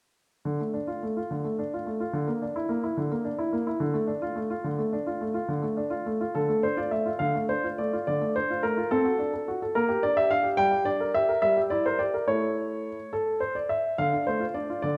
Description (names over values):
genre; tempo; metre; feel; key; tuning
classical-period piano sonatina; 71 BPM (dotted quarters); 6/8; straight; D minor; A4 = 440 Hz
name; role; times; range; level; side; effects
clear baby grand piano; solo; 0.5-15.0 s; D3 to G5; -27 LUFS; equal; none
room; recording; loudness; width
wet recital hall reverb, RT60 1.4 s; dark, warm production; -27 LUFS; mono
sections
0.5-7.2 A section; 7.2-15.0 B section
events
none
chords
0.5 Dm; 2.1 Dsus2; 3.8 Dm; 8.9 D7/C; 9.7 Gm/Bb; 10.6 Gm; 11.4 Edim/G; 12.3 A; 14.0 Dm